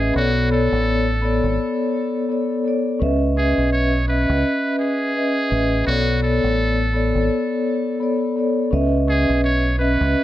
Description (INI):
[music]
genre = hip hop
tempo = 84 BPM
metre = 4/4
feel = swing 58% on 16ths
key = C# phrygian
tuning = A4 = 440 Hz
[part]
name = trumpet with metal mute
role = melody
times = 0.0-10.2 s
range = F#4 to C#5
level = -24 LUFS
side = right 1 dB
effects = high-pass filter, low-pass filter, digital delay
[part]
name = vibraphone with soft mallets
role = accompaniment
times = 0.0-10.2 s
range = B3 to E5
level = -19 LUFS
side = left 1 dB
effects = high-pass filter, low-pass filter
[part]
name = deep dub fingered electric bass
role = bass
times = 0.0-10.1 s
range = G#1 to C#2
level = -21 LUFS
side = equal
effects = none
[sound]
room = light reverb, small room ambience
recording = none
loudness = -17 LUFS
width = side -13 dB against mid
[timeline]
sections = 0.0-8.7 A section; 8.7-10.2 A section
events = none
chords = 0.2 Bm9; 3.0 C#m9; 5.9 Bm9; 8.7 C#m9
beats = | 0.16 0.87 1.58 2.30 | 3.01 3.73 4.44 5.16 | 5.87 6.58 7.30 8.01 | 8.73 9.44 10.16